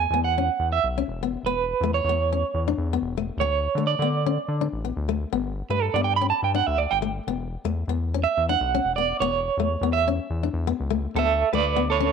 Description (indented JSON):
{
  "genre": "highlife guitar band",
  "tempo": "124 BPM",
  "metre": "4/4",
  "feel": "swing 54% on 16ths",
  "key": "D major",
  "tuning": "A4 = 442 Hz",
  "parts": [
    { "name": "electric guitar at the edge of break-up", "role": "melody", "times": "0.0-12.1 s", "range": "A4 to B5", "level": "-23 LUFS", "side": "right 8 dB", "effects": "tremolo" },
    { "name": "fingerpicked plugged-in steel-string acoustic guitar", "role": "accompaniment", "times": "0.0-12.1 s", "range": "A3 to D4", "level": "-28 LUFS", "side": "left 14 dB", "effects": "none" },
    { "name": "round analog bass", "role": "bass", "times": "0.0-12.1 s", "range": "E1 to D3", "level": "-27 LUFS", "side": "left 2 dB", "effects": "none" }
  ],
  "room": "wet spring reverb, RT60 1.4 s, small room ambience",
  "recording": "1960s-style stereo with parts hard left and right",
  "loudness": "-22 LUFS",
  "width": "side -6 dB against mid",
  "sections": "0.0-11.1 A section",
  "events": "clean electric guitar solo 0.0-11.1",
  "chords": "0.0 E5; 1.5 A/E; 3.4 D5; 5.3 Gsus2; 7.3 A/E; 11.1 D5",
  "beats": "0.00 0.48 0.97 | 1.46 1.94 2.43 2.92 | 3.40 3.88 4.37 4.86 | 5.34 5.82 6.31 6.79 | 7.28 7.76 8.24 8.73 | 9.21 9.69 10.18 10.66 | 11.14 11.62 12.10"
}